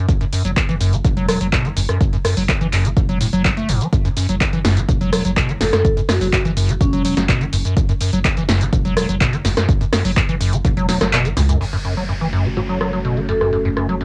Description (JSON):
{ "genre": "acid house", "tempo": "125 BPM", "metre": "4/4", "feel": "straight", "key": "F# minor", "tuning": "A4 = 440 Hz", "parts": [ { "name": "acid bass, square", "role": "riff", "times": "0.0-14.0 s", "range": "F#2 to A3", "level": "-22 LUFS", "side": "equal", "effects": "overdrive, lush chorus, cassette tape" }, { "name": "saturated sub bass", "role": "bass", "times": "0.1-14.0 s", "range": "E1 to C#2", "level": "-26 LUFS", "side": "equal", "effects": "sidechain pumping" }, { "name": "electronic kick drum", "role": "drums", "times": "0.1-10.7 s", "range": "none", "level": "-21 LUFS", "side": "equal", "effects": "cassette tape" }, { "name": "punchy analog drum machine", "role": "drums", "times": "0.1-14.0 s", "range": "crash cymbal, handclaps, hi-hat, rim click, shaker, snare drum", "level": "-24 LUFS", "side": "equal", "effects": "low-pass filter on snare, cassette tape, low-pass filter on hats, low-pass filter on perc, low-pass filter on cymbals, low-pass filter on room" }, { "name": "vibraphone with medium hard mallets", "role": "melody", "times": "5.6-7.2, 13.3-13.5 s", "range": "C#4 to A4", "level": "-24 LUFS", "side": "equal", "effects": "analog delay" }, { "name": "dark analog pad", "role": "sustained chords", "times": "11.6-14.0 s", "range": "A3 to F#4", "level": "-29 LUFS", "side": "equal", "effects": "chorus, sidechain pumping, cassette tape" }, { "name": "downlifter", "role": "sound effects", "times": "11.6-14.0 s", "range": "none", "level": "-35 LUFS", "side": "equal", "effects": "none" }, { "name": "deep mellow chord stab", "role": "stabs", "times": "12.6-12.7 s", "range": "A3 to C#5", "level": "-31 LUFS", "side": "equal", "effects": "chorus, cassette tape, analog delay" } ], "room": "light reverb", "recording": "home recording on cassette", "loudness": "-18 LUFS", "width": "mono", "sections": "0.0-11.6 A section; 11.6-14.0 B section", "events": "kick drops out 11.1-11.6; band accent 11.1", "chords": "0.0 N.C.; 11.6 F#m", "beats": "| 0.09 0.57 1.05 1.53 | 2.01 2.49 2.97 3.45 | 3.93 4.41 4.89 5.37 | 5.85 6.33 6.81 7.29 | 7.77 8.25 8.73 9.21 | 9.69 10.17 10.65 11.13 | 11.61 12.09 12.57 13.05 | 13.53 14.01" }